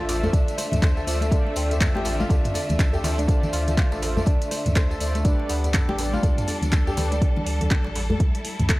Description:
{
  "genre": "afro house",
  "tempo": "122 BPM",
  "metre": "4/4",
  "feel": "swing 60% on 16ths",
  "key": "D dorian",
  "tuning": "A4 = 440 Hz",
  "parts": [
    { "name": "clear symphonic string section", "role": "sustained chords", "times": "0.0-8.8 s", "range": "D3 to E5", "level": "-32 LUFS", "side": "left 1 dB", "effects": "sidechain pumping" },
    { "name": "kora", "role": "arpeggios", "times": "0.0-8.8 s", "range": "A3 to D5", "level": "-30 LUFS", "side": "equal", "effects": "sidechain pumping, tape echo" },
    { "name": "mellow synth brass", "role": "stabs", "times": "0.0-7.1 s", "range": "D4 to D5", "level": "-34 LUFS", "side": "right 1 dB", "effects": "chorus, sidechain pumping, tape echo" },
    { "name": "warm sub bass", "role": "bass", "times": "0.0-8.8 s", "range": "A1 to D2", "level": "-27 LUFS", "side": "equal", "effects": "tube saturation, sidechain pumping" },
    { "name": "deep house drum kit", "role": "drums", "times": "0.1-8.8 s", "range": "handclaps, hi-hat, toms", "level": "-29 LUFS", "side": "equal", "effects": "none" },
    { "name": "djembe", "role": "percussion", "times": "0.1-8.8 s", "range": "none", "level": "-32 LUFS", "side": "right 1 dB", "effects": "none" },
    { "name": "tambourine", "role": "percussion", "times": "0.1-7.2 s", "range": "none", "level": "-39 LUFS", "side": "left 2 dB", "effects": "none" },
    { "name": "congas", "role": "percussion", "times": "0.2-8.8 s", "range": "none", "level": "-31 LUFS", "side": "left 1 dB", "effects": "none" },
    { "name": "electronic kick drum", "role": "drums", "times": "0.3-8.8 s", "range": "none", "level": "-21 LUFS", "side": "equal", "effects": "none" }
  ],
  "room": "little or no reverb",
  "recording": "dry, gritty hardware recording, transformer saturation",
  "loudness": "-20 LUFS",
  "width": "side -19 dB against mid",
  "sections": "0.0-8.8 A section",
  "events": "none",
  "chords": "0.0 Dm7; 5.3 G"
}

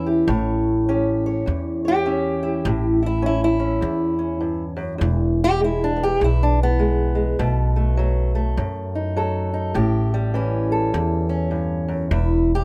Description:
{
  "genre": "acoustic country blues, solo or duo",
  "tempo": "101 BPM",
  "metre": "4/4",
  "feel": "swing 62% on 8ths",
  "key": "unclear",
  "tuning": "A4 = 440 Hz",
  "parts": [
    { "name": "fingerpicked old ladder-braced acoustic guitar", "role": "melody", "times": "0.0-12.6 s", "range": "E2 to C#5", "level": "-23 LUFS", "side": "equal", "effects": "none" },
    { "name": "upright bass", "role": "bass", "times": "0.0-12.6 s", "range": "E1 to F#2", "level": "-25 LUFS", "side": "equal", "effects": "none" }
  ],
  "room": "light reverb",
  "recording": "none",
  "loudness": "-21 LUFS",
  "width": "mono",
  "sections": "0.0-12.6 A section",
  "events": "steel-string acoustic guitar solo 0.0-12.6",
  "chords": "0.0 A7; 5.0 E; 7.4 B7; 9.8 A7; 12.1 N.C."
}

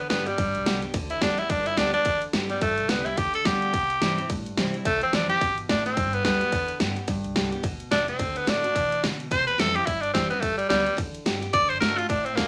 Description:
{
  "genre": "rockabilly",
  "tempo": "215 BPM",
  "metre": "4/4",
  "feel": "swing 59% on 8ths",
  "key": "G major",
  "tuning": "A4 = 440 Hz",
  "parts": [
    { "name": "raspy tenor saxophone", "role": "melody", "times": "0.0-12.5 s", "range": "G3 to D5", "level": "-26 LUFS", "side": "equal", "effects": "none" },
    { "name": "picked steel-string acoustic guitar", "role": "accompaniment", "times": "0.0-12.5 s", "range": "G2 to G4", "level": "-33 LUFS", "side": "equal", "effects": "none" },
    { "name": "upright bass", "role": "bass", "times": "0.1-12.5 s", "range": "F#1 to D3", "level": "-40 LUFS", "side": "equal", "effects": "none" },
    { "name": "dubstep drum kit", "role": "drums", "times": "0.1-12.5 s", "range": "kick drum, ride cymbal, snare drum", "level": "-31 LUFS", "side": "equal", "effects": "none" }
  ],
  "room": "moderate studio reverb, RT60 0.5 s",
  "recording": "none",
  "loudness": "-25 LUFS",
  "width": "mono",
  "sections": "0.0-12.5 A section",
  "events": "tenor saxophone solo 0.0-12.5",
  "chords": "0.0 G; 3.7 C; 6.0 G; 8.2 D; 9.3 C; 10.4 G; 11.5 D"
}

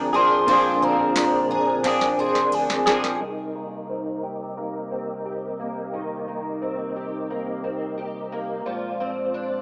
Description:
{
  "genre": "dream pop",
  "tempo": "88 BPM",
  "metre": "4/4",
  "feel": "straight",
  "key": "unclear",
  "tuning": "A4 = 440 Hz",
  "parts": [
    { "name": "hollow clarinet-like synth lead", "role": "melody", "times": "0.0-3.0 s", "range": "Ab5 to C6", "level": "-24 LUFS", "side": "equal", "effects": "chorus" },
    { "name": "direct-recorded clean electric guitar", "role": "accompaniment", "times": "0.0-3.2 s", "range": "Bb2 to Ab4", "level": "-27 LUFS", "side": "equal", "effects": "harmonic tremolo, lush chorus" },
    { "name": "mellow tonewheel organ", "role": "sustained chords", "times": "0.0-9.6 s", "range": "Bb2 to Eb5", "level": "-32 LUFS", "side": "equal", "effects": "chorus vibrato, stopped rotary speaker, low-pass filter" },
    { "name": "picked twelve-string acoustic guitar", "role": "arpeggios", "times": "0.0-9.6 s", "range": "Eb3 to Ab4", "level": "-30 LUFS", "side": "equal", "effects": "ensemble chorus, low-pass filter, tape echo" },
    { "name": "vintage muted picked electric bass", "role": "bass", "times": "0.0-3.2 s", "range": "Ab1 to D2", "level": "-44 LUFS", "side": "equal", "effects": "none" },
    { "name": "booming analog drum machine", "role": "drums", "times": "0.5-3.2 s", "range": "kick drum, ride cymbal, snare drum, tambourine", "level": "-31 LUFS", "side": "equal", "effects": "overdrive" }
  ],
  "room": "light reverb",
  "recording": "rough home demo mix, small speaker sound",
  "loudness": "-24 LUFS",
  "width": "mono",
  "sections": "0.0-3.2 A section; 3.2-9.6 B section",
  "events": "drum fill 1.8-3.2; filter sweep 3.2-9.6",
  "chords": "0.0 Bb9; 3.2 Cm7; 8.7 Bb9"
}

